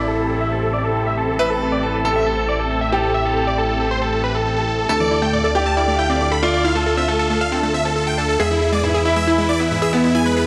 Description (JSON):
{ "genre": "trance", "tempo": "137 BPM", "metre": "4/4", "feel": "straight", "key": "A minor", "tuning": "A4 = 440 Hz", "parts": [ { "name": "big supersaw lead", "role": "melody", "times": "0.0-10.5 s", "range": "E4 to B5", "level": "-23 LUFS", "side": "equal", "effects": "low-pass filter, tape echo" }, { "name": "bright baby grand piano", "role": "second line", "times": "0.0-10.5 s", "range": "B3 to B4", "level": "-24 LUFS", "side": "equal", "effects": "delay" }, { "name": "lush unison pad", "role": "sustained chords", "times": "0.0-10.5 s", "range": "A3 to F5", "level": "-28 LUFS", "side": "equal", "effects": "chorus, phaser" }, { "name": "fat analog bass", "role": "bass", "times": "0.0-10.5 s", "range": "A1 to E2", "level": "-26 LUFS", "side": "equal", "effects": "tube saturation" }, { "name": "downlifter", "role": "sound effects", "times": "0.0-1.4 s", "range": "none", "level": "-44 LUFS", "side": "equal", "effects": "none" }, { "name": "unison pluck", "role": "arpeggios", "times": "4.9-10.4 s", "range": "G#2 to A4", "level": "-26 LUFS", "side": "equal", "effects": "tape echo" } ], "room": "moderate lush hall reverb, RT60 2.2 s", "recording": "none", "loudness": "-19 LUFS", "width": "mono", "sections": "0.0-10.5 A section", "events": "filter sweep on supersaw synth 0.0-10.5", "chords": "0.0 Am7; 4.9 Dmadd9; 8.4 E", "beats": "0.08 0.52 0.95 | 1.39 1.83 2.27 2.70 | 3.14 3.58 4.02 4.46 | 4.89 5.33 5.77 6.21 | 6.65 7.08 7.52 7.96 | 8.40 8.84 9.27 9.71 | 10.15" }